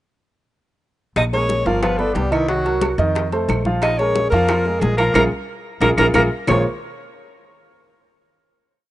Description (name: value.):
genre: Afro-Cuban jazz.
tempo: 181 BPM.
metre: 4/4.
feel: straight.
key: Bb minor.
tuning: A4 = 442 Hz.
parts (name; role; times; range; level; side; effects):
breathy alto saxophone; melody; 1.2-6.6 s; E4 to Eb5; -21 LUFS; equal; none.
warm tenor saxophone; second line; 1.2-6.6 s; E3 to Eb4; -27 LUFS; left 3 dB; none.
upright bass; bass; 1.2-6.6 s; G1 to F2; -22 LUFS; equal; none.
bongos; percussion; 1.2-6.6 s; none; -27 LUFS; left 6 dB; none.
claves; percussion; 1.2-6.6 s; none; -29 LUFS; right 2 dB; none.
congas; percussion; 1.2-6.6 s; none; -29 LUFS; left 2 dB; none.
timbales; percussion; 1.2-6.6 s; none; -28 LUFS; right 4 dB; none.
warm grand piano; accompaniment; 1.3-6.6 s; Eb3 to F5; -21 LUFS; right 1 dB; none.
room: little or no reverb.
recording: rough home demo mix, nothing above 10.6 kHz.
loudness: -16 LUFS.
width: side -15 dB against mid.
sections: 1.2-6.5 A section; 6.5-7.8 final chord.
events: drum fill 5.1-6.5; band accent 5.1-6.5.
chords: 1.2 Bbm7; 1.8 G7; 2.5 Cm7b5; 3.2 F7; 3.8 Bbm7; 6.5 Bbm9.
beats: | 1.16 1.50 1.83 2.16 | 2.49 2.83 3.16 3.49 | 3.82 4.15 4.49 4.82 | 5.15 5.48 5.81 6.14 | 6.48.